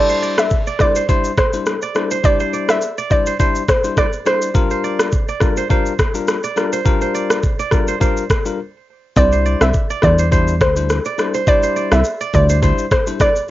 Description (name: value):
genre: afrobeats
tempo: 104 BPM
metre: 4/4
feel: swing 55% on 16ths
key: C mixolydian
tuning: A4 = 438 Hz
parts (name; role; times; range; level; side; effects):
- hollow square pluck; melody; 0.0-4.4, 9.2-13.3 s; C5 to E5; -19 LUFS; right 1 dB; chorus, cassette tape
- bell-like tine electric piano; accompaniment; 0.0-13.3 s; G3 to C5; -21 LUFS; left 6 dB; none
- kora; riff; 0.0-13.5 s; A4 to D5; -24 LUFS; right 8 dB; none
- afro-pop drum kit; drums; 0.1-13.5 s; kick drum, rim click, shaker; -17 LUFS; equal; cassette tape
- plucky analog bass; bass; 9.2-12.7 s; C2 to E2; -15 LUFS; equal; none
room: moderate booth ambience, RT60 0.2 s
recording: home recording on cassette, nothing above 7.5 kHz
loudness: -14 LUFS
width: side -15 dB against mid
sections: 0.0-13.5 A section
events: break 8.6-9.2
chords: 0.0 Cadd9; 4.5 Bb6; 9.2 Cadd9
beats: 0.51 1.09 1.66 | 2.24 2.82 3.39 3.97 | 4.55 5.12 5.70 6.28 | 6.86 7.43 8.01 8.59 | 9.16 9.74 10.32 10.89 | 11.47 12.05 12.62 13.20